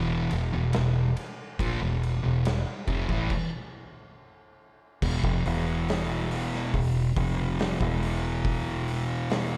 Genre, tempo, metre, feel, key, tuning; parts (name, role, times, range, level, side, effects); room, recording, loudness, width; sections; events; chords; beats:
stoner and doom metal; 70 BPM; 4/4; straight; A4 = 440 Hz
thick fuzz guitar; riff; 0.0-9.6 s; E2 to F3; -30 LUFS; equal; distortion
thick fuzz guitar; riff; 0.0-3.3 s; E2 to F3; -35 LUFS; equal; distortion
fingered electric bass; bass; 0.0-9.6 s; E1 to A#1; -34 LUFS; equal; overdrive
oversized low-tuned drum kit; drums; 0.3-9.5 s; crash cymbal, hi-hat, kick drum, ride cymbal, snare drum; -35 LUFS; equal
light reverb; dark, warm production; -28 LUFS; mono
0.0-5.0 A section; 5.0-9.6 B section
stop 3.3-5.0
0.0 E5
0.74 | 1.60 2.46 3.31 4.17 | 5.03 5.88 6.74 7.59 | 8.44 9.30